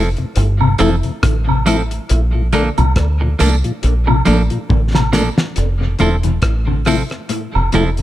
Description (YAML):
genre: roots reggae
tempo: 69 BPM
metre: 4/4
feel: swing 57% on 16ths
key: F major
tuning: A4 = 439 Hz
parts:
  - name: clean electric guitar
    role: accompaniment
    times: 0.0-7.9 s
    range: F3 to A4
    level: -21 LUFS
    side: right 2 dB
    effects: tape echo
  - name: mellow tonewheel organ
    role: accompaniment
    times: 0.0-8.0 s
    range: F2 to E4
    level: -21 LUFS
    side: left 2 dB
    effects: slow rotary speaker, dub echo
  - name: deep dub fingered electric bass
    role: bass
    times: 0.0-8.0 s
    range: E1 to D2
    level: -16 LUFS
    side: equal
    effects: none
  - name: damped 70s drum kit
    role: drums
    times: 0.2-8.0 s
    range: hi-hat, kick drum, rim click, snare drum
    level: -20 LUFS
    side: equal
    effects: dub echo
  - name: mellow electric guitar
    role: arpeggios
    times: 0.6-7.9 s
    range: A2 to F3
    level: -21 LUFS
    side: left 3 dB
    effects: none
  - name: woodblock and tambourine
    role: percussion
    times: 0.6-8.0 s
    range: none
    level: -23 LUFS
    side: right 3 dB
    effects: none
room: little or no reverb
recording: none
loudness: -13 LUFS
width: side -14 dB against mid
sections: 0.0-5.6 A section; 5.6-8.0 B section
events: drum fill 4.7-5.6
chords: 0.0 Fmaj7; 2.1 Bbmaj7; 5.6 Fmaj7